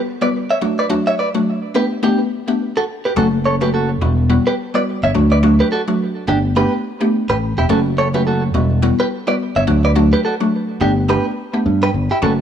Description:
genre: afrobeats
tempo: 106 BPM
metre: 4/4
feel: swing 58% on 16ths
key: unclear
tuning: A4 = 439 Hz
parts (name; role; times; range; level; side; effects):
- mallet-like synth pluck; accompaniment; 0.2-12.4 s; F#3 to G4; -18 LUFS; left 1 dB; chorus, phaser
- direct-recorded clean electric guitar; riff; 0.2-12.3 s; D4 to E5; -20 LUFS; right 2 dB; tape echo
- fingered electric bass; bass; 3.2-12.4 s; E1 to G2; -16 LUFS; equal; none
room: light reverb, digital ambience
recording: dry, gritty hardware recording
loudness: -14 LUFS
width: side -9 dB against mid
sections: 0.0-12.2 A section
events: none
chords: 0.0 Emadd9; 0.6 D; 1.8 Gadd9; 3.2 F#m; 4.0 Emadd9; 5.1 D; 6.3 Gadd9; 7.7 F#m; 8.5 Emadd9; 9.7 D; 10.8 Gadd9

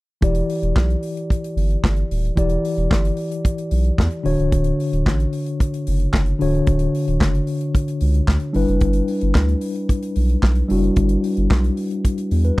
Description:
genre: disco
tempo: 112 BPM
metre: 4/4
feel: straight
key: E dorian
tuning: A4 = 437 Hz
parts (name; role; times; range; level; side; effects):
- mellow tine electric piano; accompaniment; 0.2-12.6 s; D3 to D5; -22 LUFS; left 2 dB; medium stereo tremolo
- saturated sub bass; bass; 0.2-12.5 s; C#1 to E2; -19 LUFS; equal; none
- modern studio drum kit; drums; 0.2-12.6 s; handclaps, hi-hat, kick drum, snare drum; -19 LUFS; equal; none
room: little or no reverb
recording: dry, close 1970s-style studio recording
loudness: -17 LUFS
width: side -20 dB against mid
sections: 0.2-12.6 A section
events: none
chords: 0.2 Em7; 4.3 Dmaj7; 8.6 G6

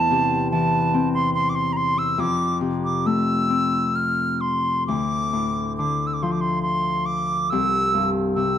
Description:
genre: celtic folk, Celtic slow air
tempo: 65-73 BPM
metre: 3/4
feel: rubato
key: unclear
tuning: A4 = 440 Hz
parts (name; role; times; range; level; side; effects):
- bright wooden flute; melody; 0.0-8.6 s; A5 to F6; -22 LUFS; right 2 dB; none
- Celtic harp; accompaniment; 0.0-8.6 s; C2 to C4; -23 LUFS; left 3 dB; none
room: moderate recital hall reverb, RT60 1.3 s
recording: dark, warm production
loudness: -20 LUFS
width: side -10 dB against mid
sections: 0.0-8.6 A section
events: none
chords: 0.0 Am/E; 2.2 F; 4.9 Dm; 7.5 C

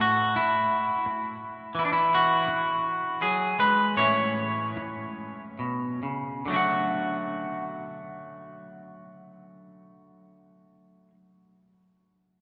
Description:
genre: folk, solo fingerstyle acoustic guitar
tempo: 67-86 BPM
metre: 3/4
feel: rubato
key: D major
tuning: A4 = 440 Hz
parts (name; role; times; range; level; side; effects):
- clean electric guitar; solo; 0.0-11.2 s; A2 to F#5; -27 LUFS; equal; none
room: wet cathedral reverb, RT60 5.1 s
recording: recorded in a church or concert hall, lossy compression artefacts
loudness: -26 LUFS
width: mono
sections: 0.0-6.4 A section; 6.4-11.7 B section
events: slowing down 1.8-6.4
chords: 0.0 N.C.; 1.8 E; 4.0 A; 6.4 D

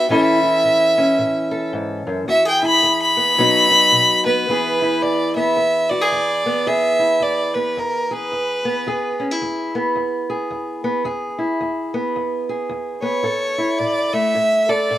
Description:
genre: acoustic country blues, solo or duo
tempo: 110 BPM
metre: 4/4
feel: swing 60% on 8ths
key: E major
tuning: A4 = 439 Hz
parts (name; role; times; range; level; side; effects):
- rich fiddle; melody; 0.0-9.2, 13.0-15.0 s; A#4 to B5; -16 LUFS; equal; none
- fingerpicked steel-string acoustic guitar; accompaniment; 0.0-15.0 s; E2 to A4; -20 LUFS; equal; none
room: little or no reverb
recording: recorded outdoors, with no room sound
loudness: -16 LUFS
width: side -13 dB against mid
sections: 0.0-4.5 A section; 4.5-15.0 B section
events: fiddle solo 0.0-4.5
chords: 0.1 A; 2.3 E; 3.4 B; 4.5 E; 13.2 A

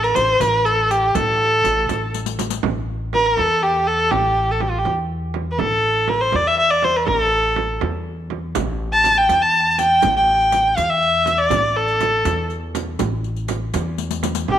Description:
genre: Persian modal ensemble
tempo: 81 BPM (dotted quarters)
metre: 6/8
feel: straight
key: A dastgah shur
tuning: A4 = 440 Hz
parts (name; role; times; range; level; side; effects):
- clear kamancheh; melody; 0.0-14.6 s; F4 to A5; -16 LUFS; equal; none
- upright bass; bass; 0.0-14.6 s; A1 to E2; -26 LUFS; left 1 dB; none
- riq; percussion; 0.0-2.6, 8.6-14.5 s; none; -29 LUFS; left 14 dB; none
- frame drum; percussion; 0.1-14.6 s; none; -27 LUFS; right 10 dB; none
room: moderate echo chamber reverb, RT60 1.6 s, small room ambience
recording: 1960s-style stereo with parts hard left and right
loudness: -16 LUFS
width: side -10 dB against mid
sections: 0.0-2.6 A section; 2.6-14.5 B section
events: drum fill 2.1-2.6, 14.0-14.5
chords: none

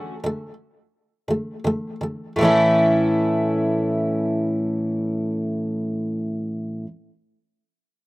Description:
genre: pop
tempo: 80-89 BPM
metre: 4/4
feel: swing 55% on 16ths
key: A major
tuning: A4 = 441 Hz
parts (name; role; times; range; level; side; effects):
- fingerpicked twelve-string acoustic guitar; accompaniment; 0.0-6.9 s; A2 to E4; -20 LUFS; equal; none
room: light reverb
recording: recorded outdoors, with no room sound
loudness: -20 LUFS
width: side -21 dB against mid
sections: 0.0-2.4 A section; 2.4-5.4 B section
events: slowing down 0.0-2.4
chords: 0.0 D5; 2.4 A

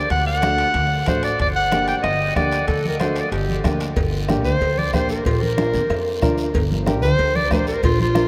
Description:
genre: latin, cumbia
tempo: 186 BPM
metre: 4/4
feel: straight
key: G harmonic minor, G minor from 4.0 s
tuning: A4 = 438 Hz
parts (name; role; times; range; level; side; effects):
- bright clarinet; melody; 0.0-8.3 s; F4 to G5; -24 LUFS; equal; none
- upright bass; bass; 0.0-8.3 s; G1 to F2; -26 LUFS; equal; none
- bombo; percussion; 0.1-8.3 s; none; -28 LUFS; equal; none
- congas; percussion; 0.1-8.3 s; none; -30 LUFS; equal; none
- guiro; percussion; 0.1-8.3 s; none; -40 LUFS; equal; none
- timbales and cowbell; percussion; 0.1-8.0 s; none; -34 LUFS; equal; none
- warm upright piano; accompaniment; 0.4-8.3 s; A3 to Bb4; -28 LUFS; equal; none
room: wet huge ambient reverb, RT60 7.3 s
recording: in a vast, echoing space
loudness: -20 LUFS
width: mono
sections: 0.0-4.0 A section; 4.0-8.3 B section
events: clarinet solo 4.0-8.3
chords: 0.1 D; 1.4 Gm; 2.7 D; 3.3 Gm; 5.3 Bb; 6.5 Gm

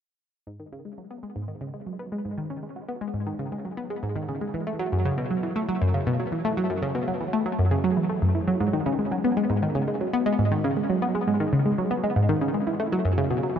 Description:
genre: ambient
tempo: 118 BPM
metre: 4/4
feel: straight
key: G# phrygian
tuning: A4 = 440 Hz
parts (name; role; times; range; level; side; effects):
- analog pluck; riff; 0.5-13.6 s; F#2 to B3; -24 LUFS; equal; chorus, phaser, tape echo
room: moderate huge ambient reverb, RT60 7.5 s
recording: nothing above 10.7 kHz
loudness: -23 LUFS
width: side -8 dB against mid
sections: 0.5-8.6 A section; 8.6-13.6 B section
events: fade-in on synth arpeggio sound 0.5-8.6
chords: none

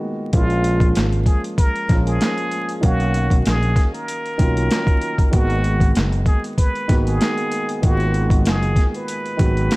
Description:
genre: hip hop, boom-bap hip-hop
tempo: 96 BPM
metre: 4/4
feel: swing 56% on 16ths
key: G# dorian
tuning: A4 = 442 Hz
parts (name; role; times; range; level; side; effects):
- dark grand piano; accompaniment; 0.0-9.8 s; D#3 to E#5; -24 LUFS; equal; high-pass filter, low-pass filter
- trumpet with plunger mute; melody; 0.3-9.8 s; E#4 to B4; -25 LUFS; equal; high-pass filter, low-pass filter, digital delay
- fretless electric bass; bass; 0.3-9.7 s; F#1 to B1; -19 LUFS; equal; none
- boom bap sampler-style drum kit; drums; 0.3-9.8 s; handclaps, hi-hat, kick drum, snare drum; -18 LUFS; equal; overdrive, vintage 12-bit sampler grit
room: small room ambience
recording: dark, warm production, vinyl crackle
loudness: -16 LUFS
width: side -21 dB against mid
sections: 0.3-9.8 A section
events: break 0.0-0.3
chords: 0.3 A#m7; 2.8 Bmaj9#11; 5.3 G#m9

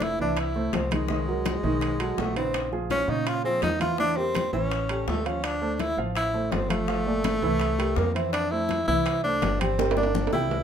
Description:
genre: Afro-Cuban jazz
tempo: 166 BPM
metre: 4/4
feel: straight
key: F major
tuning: A4 = 440 Hz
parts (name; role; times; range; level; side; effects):
- breathy tenor saxophone; melody; 0.0-10.6 s; Ab3 to F4; -27 LUFS; equal; none
- warm baby grand piano; accompaniment; 0.0-10.6 s; Bb2 to G5; -29 LUFS; right 3 dB; none
- upright bass; bass; 0.0-10.6 s; F1 to Bb2; -31 LUFS; left 1 dB; none
- bongos; percussion; 0.0-10.4 s; none; -35 LUFS; left 7 dB; none
- congas; percussion; 0.0-10.6 s; none; -35 LUFS; left 4 dB; none
- timbales; percussion; 0.0-10.6 s; none; -32 LUFS; right 5 dB; none
room: moderate club reverb, RT60 0.6 s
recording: minimal, uncompressed stereo recording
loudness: -23 LUFS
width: side -8 dB against mid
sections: 0.0-10.6 A section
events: drum fill 9.8-10.6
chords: 0.0 Fmaj7; 1.1 Cm7b5; 1.8 B13; 2.5 Bbm7; 4.0 Edim; 4.7 A7b13; 5.4 Dm9; 6.9 Gm11; 7.6 C6; 8.3 Fmaj7; 9.8 Gm

